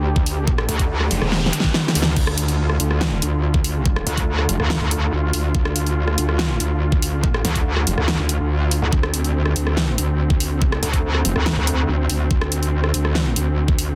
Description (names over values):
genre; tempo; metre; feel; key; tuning
heavy wobble dubstep; 142 BPM; 4/4; half-time; D minor; A4 = 441 Hz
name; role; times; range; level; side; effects
bright symphonic string section; sustained chords; 0.0-14.0 s; D3 to G4; -30 LUFS; equal; sidechain pumping, low-pass filter
metallic wobble bass; bass; 0.0-14.0 s; F1 to D2; -22 LUFS; equal; distortion, chorus, overdrive
electronic kick drum; drums; 0.2-13.8 s; none; -22 LUFS; equal; overdrive
dubstep drum kit; drums; 0.3-13.9 s; crash cymbal, hi-hat, rim click, snare drum; -25 LUFS; equal; overdrive
noise sweep; sound effects; 0.8-2.2 s; none; -33 LUFS; equal; none
metallic wobble bass; bass; 0.7-1.5, 4.1-11.9 s; E1 to D2; -22 LUFS; equal; distortion, chorus, overdrive
room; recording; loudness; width
digital ambience; dense, heavily limited modern master; -20 LUFS; mono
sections
0.0-14.0 A section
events
noise sweep 0.8-2.2; drum fill 1.3-2.2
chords
0.0 Dm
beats
0.05 | 0.47 0.90 1.32 1.74 | 2.17 2.59 3.01 3.43 | 3.85 4.28 4.70 5.12 | 5.55 5.97 6.39 6.81 | 7.24 7.66 8.08 8.50 | 8.93 9.35 9.77 10.19 | 10.62 11.04 11.46 11.88 | 12.31 12.73 13.15 13.57